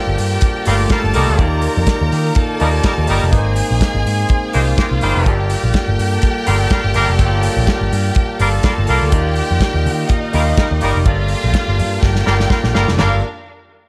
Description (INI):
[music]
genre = disco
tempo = 124 BPM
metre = 4/4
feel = straight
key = G minor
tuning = A4 = 437 Hz
[part]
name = clear studio string section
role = second line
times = 0.0-13.2 s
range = D4 to Bb5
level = -25 LUFS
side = equal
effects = tape echo
[part]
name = barky tine electric piano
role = accompaniment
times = 0.0-13.2 s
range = A3 to F5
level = -24 LUFS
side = equal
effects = overdrive, subtle chorus
[part]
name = tonewheel organ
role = sustained chords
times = 0.0-13.2 s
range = Eb3 to D5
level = -29 LUFS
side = equal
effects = slow rotary speaker
[part]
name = picked electric bass with an envelope filter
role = bass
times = 0.1-13.2 s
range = F1 to Eb3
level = -19 LUFS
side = equal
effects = none
[part]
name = warm soul drum kit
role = drums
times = 0.2-13.1 s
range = hi-hat, kick drum, snare drum, toms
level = -21 LUFS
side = equal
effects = none
[part]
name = clear horn section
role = stabs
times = 0.7-13.2 s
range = G3 to C5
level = -23 LUFS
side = equal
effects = none
[sound]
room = small room ambience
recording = none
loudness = -16 LUFS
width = mono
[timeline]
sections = 0.0-13.0 A section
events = drum fill 12.0-13.0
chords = 0.0 Gm7; 1.4 Ebmaj7; 3.3 Abmaj7; 5.3 Gm7; 9.1 Ebmaj7; 11.1 Gm7